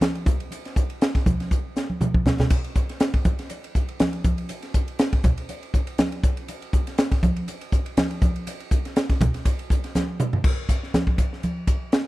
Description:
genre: jazz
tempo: 121 BPM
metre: 4/4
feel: swing 55% on 16ths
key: none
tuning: none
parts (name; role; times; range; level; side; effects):
- crisp fusion drum kit; drums; 0.0-12.1 s; crash cymbal, hi-hat, kick drum, ride cymbal, snare drum, splash cymbal, toms; -22 LUFS; equal; none
- congas; percussion; 0.0-11.6 s; none; -25 LUFS; right 1 dB; none
room: small room ambience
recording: none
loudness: -21 LUFS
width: side -18 dB against mid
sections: 0.0-10.4 A section; 10.4-12.1 A section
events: drum fill 1.5-2.5, 10.0-10.4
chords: none

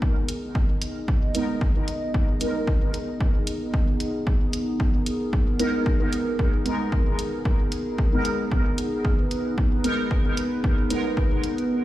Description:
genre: dub techno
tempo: 113 BPM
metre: 4/4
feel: swing 56% on 16ths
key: G# minor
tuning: A4 = 440 Hz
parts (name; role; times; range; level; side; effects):
- dark analog pad; sustained chords; 0.0-11.8 s; B3 to D#5; -28 LUFS; equal; chorus, phaser, sidechain pumping
- electronic kick drum; drums; 0.0-11.3 s; none; -23 LUFS; equal; none
- electronic hi-hat; drums; 0.3-11.7 s; none; -35 LUFS; equal; none
- resonant sweep polysynth; stabs; 1.3-11.1 s; G#3 to A#4; -28 LUFS; equal; chorus, phaser, dub echo
room: light reverb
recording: played on a big sound system in a bare room, stone room reverb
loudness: -21 LUFS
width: side -14 dB against mid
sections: 0.0-11.8 A section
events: none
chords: 0.0 G#madd9

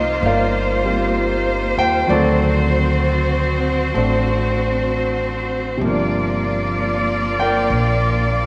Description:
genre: jazz ballad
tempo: 64 BPM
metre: 4/4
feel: swing 66% on 8ths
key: unclear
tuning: A4 = 436 Hz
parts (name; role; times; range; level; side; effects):
- clear concert grand piano; accompaniment; 0.0-8.5 s; C3 to G5; -23 LUFS; equal; none
- clear studio cello section; sustained chords; 0.0-8.5 s; F3 to D5; -22 LUFS; equal; none
- upright bass; bass; 0.0-8.5 s; G1 to Eb2; -24 LUFS; equal; none
room: moderate echo chamber reverb, RT60 2.0 s, small room ambience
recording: none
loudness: -18 LUFS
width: mono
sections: 0.0-8.5 A section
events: none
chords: 0.0 Cm11; 2.1 D7b9; 5.8 Gm7

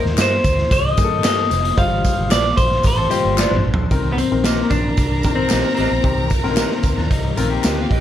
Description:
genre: uptempo 1960s-style soul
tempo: 113 BPM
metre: 4/4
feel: straight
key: C dorian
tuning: A4 = 440 Hz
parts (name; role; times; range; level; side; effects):
- warm concert grand piano; accompaniment; 0.0-7.8 s; D3 to C5; -25 LUFS; left 6 dB; none
- vintage muted fingered electric bass; bass; 0.0-8.0 s; F1 to G2; -22 LUFS; right 1 dB; none
- raw garage drum kit; drums; 0.1-8.0 s; hi-hat, kick drum, snare drum, toms; -19 LUFS; equal; none
- electric guitar through a small old amp; melody; 0.2-6.3 s; Bb3 to F5; -20 LUFS; left 2 dB; analog delay
- electric guitar through a small old amp; stabs; 0.2-8.0 s; F4 to Eb5; -26 LUFS; right 8 dB; none
- handclaps and tambourine; percussion; 0.2-7.8 s; none; -29 LUFS; left 1 dB; none
- electric guitar at the edge of break-up; riff; 3.0-8.0 s; F3 to A4; -26 LUFS; left 7 dB; none
- warm studio violin section; second line; 3.9-8.0 s; F4 to Bb5; -28 LUFS; right 1 dB; none
room: light reverb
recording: none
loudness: -15 LUFS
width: side -11 dB against mid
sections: 0.0-3.9 A section; 3.9-8.0 B section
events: drum fill 3.4-3.9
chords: 0.0 Cm7; 1.8 G7sus4; 3.9 Cm7

